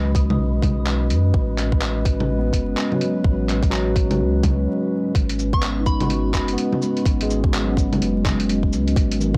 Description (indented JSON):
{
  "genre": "future garage",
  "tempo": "126 BPM",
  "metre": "4/4",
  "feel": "swing 61% on 16ths",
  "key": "G# phrygian",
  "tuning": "A4 = 440 Hz",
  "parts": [
    { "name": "barky tine electric piano", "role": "accompaniment", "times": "0.0-9.4 s", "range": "D#3 to F#4", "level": "-28 LUFS", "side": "equal", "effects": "subtle chorus, sidechain pumping, analog delay" },
    { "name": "dark analog pad", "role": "sustained chords", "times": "0.0-9.4 s", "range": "G#3 to D#5", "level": "-27 LUFS", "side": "equal", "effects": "chorus, sidechain pumping" },
    { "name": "warm sub bass", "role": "bass", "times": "0.0-9.4 s", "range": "F#1 to F#2", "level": "-25 LUFS", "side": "equal", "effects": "sidechain pumping" },
    { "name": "wind-like tuned noise texture", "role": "texture", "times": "0.0-4.7 s", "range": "B4", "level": "-44 LUFS", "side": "equal", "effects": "built-in reverb" },
    { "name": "electronic kick drum", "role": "drums", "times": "0.1-9.4 s", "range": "none", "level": "-22 LUFS", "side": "equal", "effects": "none" },
    { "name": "lo-fi sampler-style drum kit", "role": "drums", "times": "0.2-9.3 s", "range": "bongos, cabasa, handclaps, hi-hat", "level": "-28 LUFS", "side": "equal", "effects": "none" },
    { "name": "soft synth bell", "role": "melody", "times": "5.5-6.5 s", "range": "B5 to C#6", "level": "-35 LUFS", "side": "equal", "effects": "chorus, phaser, tremolo, tape echo" }
  ],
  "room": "digital ambience",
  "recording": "dry, gritty hardware recording, vinyl crackle",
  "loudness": "-20 LUFS",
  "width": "mono",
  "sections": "0.0-5.2 A section; 5.2-9.4 A section",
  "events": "break 4.7-5.2",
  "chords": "0.0 C#m9; 1.3 A6; 5.2 G#m7"
}